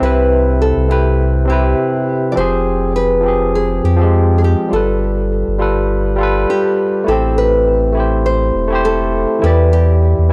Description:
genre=sunset chillout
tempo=102 BPM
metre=4/4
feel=swing 57% on 16ths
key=unclear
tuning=A4 = 439 Hz
part: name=nylon-string guitar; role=melody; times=0.0-10.3 s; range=G4 to D5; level=-20 LUFS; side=equal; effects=analog delay
part: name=barky tine electric piano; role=accompaniment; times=0.0-10.3 s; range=C3 to D5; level=-19 LUFS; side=equal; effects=analog delay
part: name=warm sub bass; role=bass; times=0.0-10.3 s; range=E1 to F2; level=-18 LUFS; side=equal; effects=transformer saturation
room=light reverb, studio ambience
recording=dry, gritty hardware recording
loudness=-14 LUFS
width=mono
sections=0.0-7.1 A section; 7.1-10.3 B section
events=none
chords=0.0 Cmaj7; 2.4 Fmadd9; 4.7 G9; 7.1 Am7; 9.4 Em7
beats=| 0.02 0.61 1.20 1.78 | 2.37 2.96 3.55 4.14 | 4.73 5.31 5.90 6.49 | 7.08 7.67 8.26 8.84 | 9.43 10.02

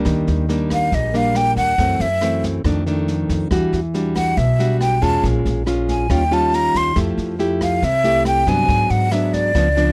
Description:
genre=bossa nova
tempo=139 BPM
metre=4/4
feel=straight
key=unclear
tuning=A4 = 443 Hz
part: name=nylon-string guitar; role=accompaniment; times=0.0-9.9 s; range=F2 to G4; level=-22 LUFS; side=equal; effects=none
part: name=upright bass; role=bass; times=0.0-9.9 s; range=Bb1 to G#2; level=-24 LUFS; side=equal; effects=none
part: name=open jazz drum kit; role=drums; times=0.1-9.8 s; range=kick drum, rim click, snare drum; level=-30 LUFS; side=equal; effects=none
part: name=breathy jazz flute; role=melody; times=0.7-9.9 s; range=D5 to C6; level=-21 LUFS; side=equal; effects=none
room=little or no reverb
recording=dry, close 1970s-style studio recording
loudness=-18 LUFS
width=mono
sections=0.0-9.9 A section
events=none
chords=0.1 Ebmaj7; 1.8 F#m7b5; 2.6 F6; 3.5 Em9; 5.2 Bbm7; 6.1 Eb9; 7.0 Fmaj9; 8.7 G#m7b5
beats=| 0.06 0.49 0.92 1.35 | 1.78 2.22 2.65 3.08 | 3.51 3.94 4.37 4.80 | 5.24 5.67 6.10 6.53 | 6.96 7.39 7.83 8.26 | 8.69 9.12 9.55

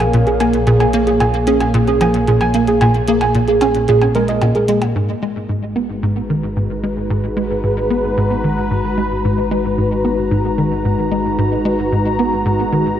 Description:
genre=ambient, sequencer-driven space music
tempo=112 BPM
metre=4/4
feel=straight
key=G# dorian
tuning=A4 = 440 Hz
part: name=sweeping resonant pad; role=sustained chords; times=0.0-13.0 s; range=A#2 to A#5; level=-18 LUFS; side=left 1 dB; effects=lush chorus
part: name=soft round pluck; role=arpeggios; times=0.0-4.7 s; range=G#4 to G#5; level=-17 LUFS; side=right 3 dB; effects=chorus, auto-pan, tape echo
part: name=tight sequencer bass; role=riff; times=0.0-12.9 s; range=G#2 to C#4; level=-18 LUFS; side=equal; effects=ensemble chorus, tape echo
part: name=warm sub bass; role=bass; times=0.0-13.0 s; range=G#1 to A#1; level=-26 LUFS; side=equal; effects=none
part: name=electronic hi-hat and percussion blips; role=percussion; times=0.0-4.9 s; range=none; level=-29 LUFS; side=right 1 dB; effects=overdrive, tape echo
room=wet lush hall reverb, RT60 2.6 s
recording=worn, warbling old tape, cassette tape, warbly pitch drift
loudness=-14 LUFS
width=side -10 dB against mid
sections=0.0-5.0 A section; 5.0-13.0 B section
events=none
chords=0.0 A#m7; 5.0 G#m7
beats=0.14 | 0.67 1.21 1.74 2.28 | 2.81 3.35 3.88 4.42 | 4.96 5.49 6.03 6.56 | 7.10 7.63 8.17 8.71 | 9.24 9.78 10.31 10.85 | 11.38 11.92 12.46 12.99

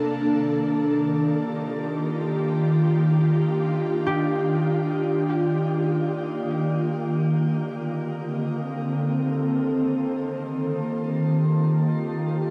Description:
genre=ambient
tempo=free time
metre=none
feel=none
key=F mixolydian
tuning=A4 = 439 Hz
part: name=ethereal airy pad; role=sustained chords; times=0.0-12.5 s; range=D3 to A4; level=-24 LUFS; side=equal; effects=ensemble chorus, built-in reverb
part: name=concert harp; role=arpeggios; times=4.1-6.4 s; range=G4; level=-36 LUFS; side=equal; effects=tape echo
room=wet shimmer reverb, RT60 7.7 s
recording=cassette tape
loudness=-24 LUFS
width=mono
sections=0.0-4.8 A section; 4.8-12.5 B section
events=none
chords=0.0 F9sus4; 2.4 Ebmaj9; 7.2 Bbmaj9; 9.6 F9sus4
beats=free time

